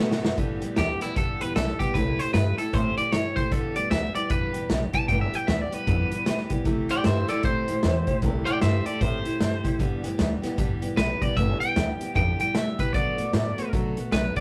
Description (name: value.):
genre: rockabilly.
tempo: 153 BPM.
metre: 4/4.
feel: swing 62% on 8ths.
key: G major.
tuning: A4 = 439 Hz.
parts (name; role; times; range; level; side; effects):
picked steel-string acoustic guitar; accompaniment; 0.0-14.4 s; G2 to G4; -33 LUFS; equal; none.
upright bass; bass; 0.0-14.4 s; G1 to C3; -31 LUFS; equal; none.
vintage drum kit; drums; 0.1-14.4 s; hi-hat, kick drum, snare drum; -29 LUFS; equal; none.
electric guitar at the edge of break-up; melody; 0.8-14.4 s; E4 to A5; -30 LUFS; equal; none.
room: moderate studio reverb, RT60 0.5 s.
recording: rough rehearsal-room recording.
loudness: -25 LUFS.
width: mono.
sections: 0.4-14.4 A section.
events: drum fill 0.0-0.4.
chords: 0.4 G6; 1.9 C6; 3.5 G6; 6.7 C6; 9.8 G6; 12.9 D6.